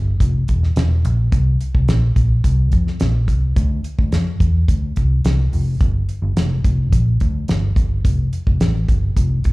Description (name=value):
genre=indie pop, bedroom pop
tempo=107 BPM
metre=4/4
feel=straight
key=unclear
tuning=A4 = 438 Hz
part: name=vintage muted fingered electric bass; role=bass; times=0.0-9.5 s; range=E1 to F2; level=-16 LUFS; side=equal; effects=none
part: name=damped 70s drum kit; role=drums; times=0.2-9.5 s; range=hi-hat, kick drum, snare drum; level=-18 LUFS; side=equal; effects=none
room=little or no reverb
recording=live gig heard through the venue's PA, club reverb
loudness=-15 LUFS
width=side -22 dB against mid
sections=0.0-9.5 A section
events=none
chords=none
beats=0.20 0.77 | 1.32 1.89 2.44 3.01 | 3.57 4.13 4.69 5.25 | 5.81 6.37 6.93 7.49 | 8.05 8.61 9.17